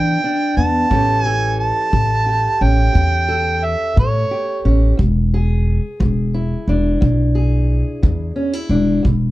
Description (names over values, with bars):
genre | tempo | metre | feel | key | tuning
acoustic country blues, solo or duo | 59 BPM (dotted quarters) | 12/8 | straight | unclear | A4 = 440 Hz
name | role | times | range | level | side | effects
overdriven harmonica | melody | 0.0-4.7 s | C#5 to A5 | -18 LUFS | right 2 dB | none
fingerpicked steel-string acoustic guitar | accompaniment | 0.0-9.3 s | E2 to A4 | -22 LUFS | equal | none
upright bass | bass | 0.0-9.3 s | E1 to E3 | -16 LUFS | equal | none
kick drum | drums | 0.9-9.2 s | none | -20 LUFS | equal | none
room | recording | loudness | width
little or no reverb | dark, warm production | -14 LUFS | side -17 dB against mid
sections
0.0-9.3 A section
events
none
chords
0.0 E5; 0.9 A7; 5.0 E7